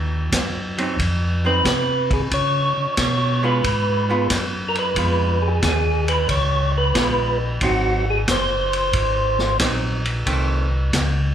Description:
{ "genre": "soul jazz organ trio", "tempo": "90 BPM", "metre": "4/4", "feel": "swing 69% on 8ths", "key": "unclear", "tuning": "A4 = 441 Hz", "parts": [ { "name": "mellow tonewheel organ", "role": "bass", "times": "0.0-11.3 s", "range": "Gb1 to Db3", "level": "-22 LUFS", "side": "equal", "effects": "chorus vibrato, slow rotary speaker" }, { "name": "vintage drum kit", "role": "drums", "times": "0.3-11.1 s", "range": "hi-hat, kick drum, ride cymbal, snare drum", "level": "-24 LUFS", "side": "equal", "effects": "none" }, { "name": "archtop guitar, miked and amplified", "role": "accompaniment", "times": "0.8-10.7 s", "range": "Eb3 to F4", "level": "-26 LUFS", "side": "right 3 dB", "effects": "slapback echo" }, { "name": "percussive tonewheel organ", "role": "melody", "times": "1.5-9.6 s", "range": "Gb4 to Db5", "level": "-21 LUFS", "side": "right 1 dB", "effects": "slow rotary speaker, slapback echo" } ], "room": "moderate club reverb, RT60 0.7 s", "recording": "live gig heard through the venue's PA, club reverb", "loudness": "-18 LUFS", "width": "side -9 dB against mid", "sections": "0.0-11.3 A section", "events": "none", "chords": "0.0 Ab7 (rootless); 2.3 Db7; 7.6 Ab7; 10.3 F7 (rootless)", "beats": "0.32 0.98 1.64 | 2.31 2.97 3.63 4.29 | 4.96 5.62 6.29 6.95 | 7.61 8.27 8.94 9.60 | 10.26 10.93" }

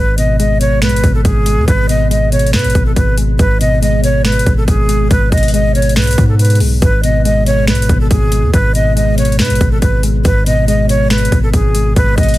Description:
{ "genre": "hip hop, trap", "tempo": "140 BPM", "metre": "4/4", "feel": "half-time", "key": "G# minor", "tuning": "A4 = 441 Hz", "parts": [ { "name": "breathy hollow jazz flute", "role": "melody", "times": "0.0-12.4 s", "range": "G#4 to D#5", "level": "-17 LUFS", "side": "right 1 dB", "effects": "tape echo" }, { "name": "soft electric-piano-like synth keys", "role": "accompaniment", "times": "0.0-12.4 s", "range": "G#2 to G#3", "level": "-16 LUFS", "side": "left 1 dB", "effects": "chorus" }, { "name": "hard-hitting 808-style bass", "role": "bass", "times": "0.0-12.4 s", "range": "G#1 to G#2", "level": "-14 LUFS", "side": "equal", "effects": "none" }, { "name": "trap drum kit", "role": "drums", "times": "0.2-12.4 s", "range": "finger snaps, hi-hat, kick drum, snare drum", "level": "-15 LUFS", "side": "equal", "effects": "overdrive" } ], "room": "digital ambience", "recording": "dense, heavily limited modern master, vinyl crackle", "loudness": "-10 LUFS", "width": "side -16 dB against mid", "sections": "0.0-12.4 A section", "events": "none", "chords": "0.0 G#m", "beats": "0.39 0.82 1.25 | 1.68 2.11 2.54 2.96 | 3.39 3.82 4.25 4.68 | 5.11 5.54 5.96 6.39 | 6.82 7.25 7.68 8.11 | 8.54 8.96 9.39 9.82 | 10.25 10.68 11.11 11.54 | 11.96" }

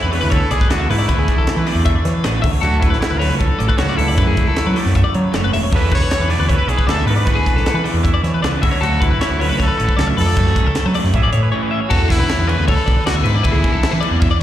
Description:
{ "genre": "math rock and midwest emo", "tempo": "155 BPM", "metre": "4/4", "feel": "straight", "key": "unclear", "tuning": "A4 = 442 Hz", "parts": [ { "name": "brilliant trumpet", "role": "melody", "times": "0.0-14.4 s", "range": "E4 to D5", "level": "-23 LUFS", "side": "equal", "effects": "slapback echo, digital delay" }, { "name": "twangy electric guitar", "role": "accompaniment", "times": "0.0-13.4 s", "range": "E2 to G#4", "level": "-27 LUFS", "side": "right 9 dB", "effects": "slapback echo" }, { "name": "twelve-string electric guitar", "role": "arpeggios", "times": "0.0-14.4 s", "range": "G#4 to E5", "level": "-23 LUFS", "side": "left 8 dB", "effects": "slapback echo" }, { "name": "growling picked electric bass", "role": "bass", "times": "0.0-14.3 s", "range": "E1 to F#3", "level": "-18 LUFS", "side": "equal", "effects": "overdrive" }, { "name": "crunchy overdriven guitar", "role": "riff", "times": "0.1-14.3 s", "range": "E3 to G#4", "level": "-24 LUFS", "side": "right 2 dB", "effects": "slapback echo" }, { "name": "crisp fusion drum kit", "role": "drums", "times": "0.1-14.4 s", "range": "crash cymbal, hi-hat, kick drum, snare drum", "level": "-19 LUFS", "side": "equal", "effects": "none" } ], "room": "small room ambience", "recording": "live gig heard through the venue's PA, recital hall reverb", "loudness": "-14 LUFS", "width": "side -12 dB against mid", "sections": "0.0-11.9 A section; 11.9-14.4 B section", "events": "break 11.5-11.9", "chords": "0.0 E7sus4; 2.4 Dmaj9; 4.2 F#m11; 5.7 E7sus4; 8.6 Dmaj9; 10.4 F#m11; 11.1 Amaj9; 11.9 E7sus4", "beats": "0.31 0.70 | 1.08 1.47 1.85 2.24 | 2.63 3.01 3.40 3.79 | 4.17 4.56 4.95 5.33 | 5.72 6.11 6.50 6.88 | 7.27 7.66 8.04 8.43 | 8.82 9.21 9.59 9.98 | 10.36 10.75 11.14 11.52 | 11.91 12.29 12.68 13.06 | 13.45 13.83 14.21" }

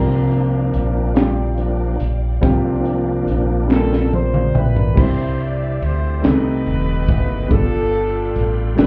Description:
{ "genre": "slow gospel", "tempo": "47 BPM (dotted quarters)", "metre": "6/8", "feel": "straight", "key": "unclear", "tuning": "A4 = 443 Hz", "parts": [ { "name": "warm grand piano", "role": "accompaniment", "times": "0.0-8.9 s", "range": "G2 to B5", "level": "-24 LUFS", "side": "equal", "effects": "none" }, { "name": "bright tonewheel organ", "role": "sustained chords", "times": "0.0-8.9 s", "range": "F3 to B5", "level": "-28 LUFS", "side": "equal", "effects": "slow rotary speaker, chorus vibrato" }, { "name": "muted symphonic string section", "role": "sustained chords", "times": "0.0-4.9 s", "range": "D5 to G5", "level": "-40 LUFS", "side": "equal", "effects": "none" }, { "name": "fingered electric bass with an envelope filter", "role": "bass", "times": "0.0-8.9 s", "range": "Eb1 to D2", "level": "-22 LUFS", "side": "equal", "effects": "none" }, { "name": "crisp fusion drum kit", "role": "drums", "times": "0.3-8.9 s", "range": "crash cymbal, hi-hat, kick drum, ride cymbal, snare drum, toms", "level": "-21 LUFS", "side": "equal", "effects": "none" }, { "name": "group handclap", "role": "percussion", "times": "1.2-8.9 s", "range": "none", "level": "-39 LUFS", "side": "equal", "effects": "none" }, { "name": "clear horn section", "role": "melody", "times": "3.7-8.9 s", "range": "D4 to D5", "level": "-26 LUFS", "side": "equal", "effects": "none" } ], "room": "light reverb", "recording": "heard muffled through a wall, club reverb, EQ", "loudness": "-18 LUFS", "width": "mono", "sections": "0.0-5.0 A section; 5.0-8.9 B section", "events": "tonewheel organ solo 0.0-5.0; drum fill 3.7-5.0", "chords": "0.0 C9sus4; 5.0 Cmaj9; 6.2 Cm6; 7.5 G9", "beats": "1.18 | 2.44 3.71 | 4.98 6.24 | 7.51 8.78" }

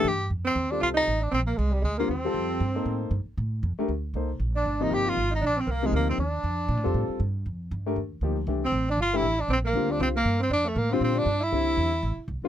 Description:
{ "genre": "jazz", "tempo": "236 BPM", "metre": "4/4", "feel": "swing 57% on 8ths", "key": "F mixolydian", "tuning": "A4 = 439 Hz", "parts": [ { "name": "breathy tenor saxophone", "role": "melody", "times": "0.0-12.3 s", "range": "G3 to G4", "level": "-28 LUFS", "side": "equal", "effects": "none" }, { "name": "warm grand piano", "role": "accompaniment", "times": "0.0-12.5 s", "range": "C3 to C5", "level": "-28 LUFS", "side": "left 4 dB", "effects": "none" }, { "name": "upright bass", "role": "bass", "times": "0.0-12.5 s", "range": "G1 to Bb2", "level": "-28 LUFS", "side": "right 1 dB", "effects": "none" }, { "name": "clear alto saxophone", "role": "second line", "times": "0.4-12.3 s", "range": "G3 to G4", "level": "-31 LUFS", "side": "right 5 dB", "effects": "none" } ], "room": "little or no reverb", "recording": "close, detailed microphones", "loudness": "-24 LUFS", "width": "side -11 dB against mid", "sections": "0.3-12.5 A section", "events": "none", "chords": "0.3 F9; 1.3 Bb69; 2.4 F13; 4.4 Bb13; 6.4 F13; 8.5 C69; 9.5 Bb69; 10.5 F69; 11.0 Bb69; 11.5 C69", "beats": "0.06 | 0.32 0.57 0.83 1.08 | 1.34 1.59 1.85 2.10 | 2.36 2.61 2.87 3.12 | 3.38 3.63 3.89 4.14 | 4.40 4.65 4.91 5.16 | 5.42 5.67 5.93 6.18 | 6.43 6.69 6.95 7.20 | 7.45 7.71 7.96 8.22 | 8.47 8.73 8.98 9.24 | 9.49 9.74 10.00 10.25 | 10.51 10.76 11.02 11.27 | 11.52 11.78 12.03 12.29" }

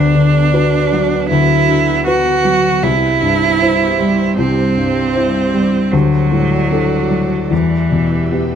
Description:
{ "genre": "neoclassical piano and strings", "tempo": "78 BPM", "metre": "4/4", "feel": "rubato", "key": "unclear", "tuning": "A4 = 442 Hz", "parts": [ { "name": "clear cello", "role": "second line", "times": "0.0-8.6 s", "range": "E3 to F#4", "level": "-16 LUFS", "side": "right 5 dB", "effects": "none" }, { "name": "felt-muted upright piano", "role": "accompaniment", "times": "0.0-8.6 s", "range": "C2 to C5", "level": "-14 LUFS", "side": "left 2 dB", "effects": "none" }, { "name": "ethereal airy pad", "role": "sustained chords", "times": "0.0-8.6 s", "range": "G3 to E5", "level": "-23 LUFS", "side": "right 2 dB", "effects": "ensemble chorus, built-in reverb" } ], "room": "light reverb", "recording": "none", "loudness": "-12 LUFS", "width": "side -8 dB against mid", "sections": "0.0-8.6 A section", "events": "none", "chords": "0.0 Bm/D; 2.8 C; 5.9 D; 7.5 Em", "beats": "0.54 1.30 2.06 | 2.83 3.61 4.38 5.15 | 5.93 6.71 7.51 8.31" }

